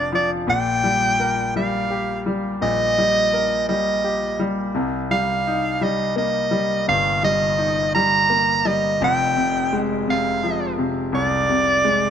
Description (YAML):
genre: pop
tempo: 56 BPM (dotted quarters)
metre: 6/8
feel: straight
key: C minor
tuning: A4 = 440 Hz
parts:
  - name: bright soprano saxophone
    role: melody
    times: 0.0-12.1 s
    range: D5 to Bb5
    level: -20 LUFS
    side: right 2 dB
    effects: none
  - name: clear concert grand piano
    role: accompaniment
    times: 0.0-12.1 s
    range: F1 to Bb4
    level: -22 LUFS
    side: left 2 dB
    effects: none
room: light reverb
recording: none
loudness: -18 LUFS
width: side -8 dB against mid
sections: 0.0-12.1 A section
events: none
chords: 0.5 Eb/Bb; 4.7 Cm7; 9.0 Fm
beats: | 0.48 1.55 | 2.62 3.68 | 4.75 5.81 | 6.88 7.95 | 9.01 10.08 | 11.15